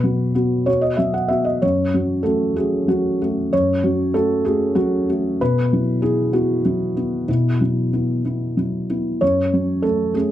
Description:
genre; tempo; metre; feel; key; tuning
neoclassical minimalist piano; 64 BPM (dotted quarters); 6/8; rubato; F# minor; A4 = 440 Hz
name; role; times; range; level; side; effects
felt-muted upright piano; solo; 0.0-10.3 s; F#2 to F#5; -17 LUFS; equal; none
room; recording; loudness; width
light reverb; dark, warm production; -17 LUFS; side -12 dB against mid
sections
0.0-9.2 A section; 9.2-10.3 A section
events
none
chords
0.0 Bsus4; 1.6 F#m; 5.4 Bsus4; 9.2 F#m

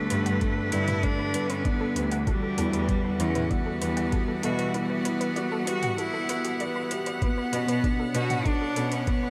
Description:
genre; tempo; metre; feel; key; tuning
piano and strings electronica; 97 BPM; 4/4; straight; unclear; A4 = 438 Hz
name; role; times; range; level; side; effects
rich cello; melody; 0.0-9.3 s; G3 to F#4; -32 LUFS; equal; tape echo
rich string quartet; sustained chords; 0.0-9.3 s; D3 to F#5; -35 LUFS; equal; sidechain pumping
felt-muted upright piano; riff; 0.0-9.3 s; A3 to B4; -36 LUFS; equal; subtle chorus, tape echo
soft round pluck; arpeggios; 0.1-9.3 s; F#4 to B5; -40 LUFS; equal; chorus, sidechain pumping, tape echo
clear chamber cello section; bass; 0.1-9.0 s; D2 to B2; -33 LUFS; equal; sidechain pumping
deep house drum kit; drums; 0.1-9.2 s; hi-hat, toms; -39 LUFS; equal; overdrive
electronic kick drum; drums; 0.4-9.2 s; none; -30 LUFS; equal; none
room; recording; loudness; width
moderate huge ambient reverb, RT60 8.6 s; dreamy mix soaked in reverb; -27 LUFS; mono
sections
0.0-9.3 A section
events
none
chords
0.0 Gadd9; 2.3 Emadd9; 7.2 Bmadd9

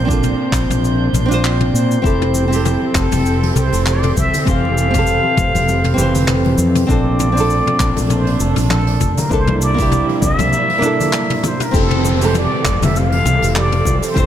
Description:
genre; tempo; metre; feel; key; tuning
sunset chillout; 99 BPM; 4/4; swing 56% on 16ths; F major; A4 = 440 Hz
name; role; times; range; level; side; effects
nylon-string guitar; accompaniment; 0.0-14.3 s; E3 to C5; -20 LUFS; moving between left 4 dB and right 4 dB; auto-pan, tape echo
rich studio string section; sustained chords; 0.0-14.3 s; C3 to A4; -24 LUFS; right 2 dB; none
fretless electric bass; bass; 0.0-14.3 s; F1 to Bb2; -17 LUFS; equal; none
drifting glass-harmonics texture; texture; 0.0-11.8 s; C5; -29 LUFS; right 2 dB; chorus, built-in reverb
electronic kick drum; drums; 0.1-14.3 s; none; -20 LUFS; equal; none
jazz brush drum kit; drums; 0.1-14.3 s; cabasa, handclaps, hi-hat, toms; -22 LUFS; left 1 dB; none
congas; percussion; 2.3-14.0 s; none; -26 LUFS; left 3 dB; none
trumpet with plunger mute; melody; 3.0-14.3 s; A4 to F5; -20 LUFS; left 1 dB; digital delay
downlifter; sound effects; 11.7-14.3 s; none; -24 LUFS; equal; none
room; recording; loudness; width
light reverb, studio reverb; none; -13 LUFS; side -10 dB against mid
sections
0.0-11.7 A section; 11.7-14.3 B section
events
drum fill 11.1-11.7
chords
0.0 Bbmaj7; 2.0 Fmaj9; 6.9 Bbmaj7; 9.3 C7; 11.7 Fmaj9

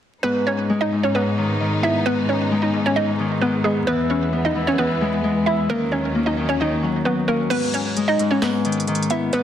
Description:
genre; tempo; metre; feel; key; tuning
hip hop, trap; 132 BPM; 4/4; half-time; G# minor; A4 = 440 Hz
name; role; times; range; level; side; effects
hollow square pluck; melody; 0.2-9.4 s; G#3 to E5; -21 LUFS; right 1 dB; chorus, low-pass filter, digital delay
Celtic harp; accompaniment; 0.2-9.4 s; G#2 to E4; -22 LUFS; left 3 dB; low-pass filter
warm symphonic string section; sustained chords; 0.2-7.5 s; D#2 to D#4; -26 LUFS; equal; none
trap drum kit; drums; 7.5-9.4 s; crash cymbal, hi-hat, snare drum; -28 LUFS; left 1 dB; overdrive, vintage 12-bit sampler grit
room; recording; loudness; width
light reverb; dense, heavily limited modern master, vinyl crackle; -18 LUFS; side -10 dB against mid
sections
0.2-7.5 A section; 7.5-9.4 B section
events
kick muted 7.5-9.4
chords
0.2 G#m; 3.9 E; 5.7 D#m7; 7.5 G#m

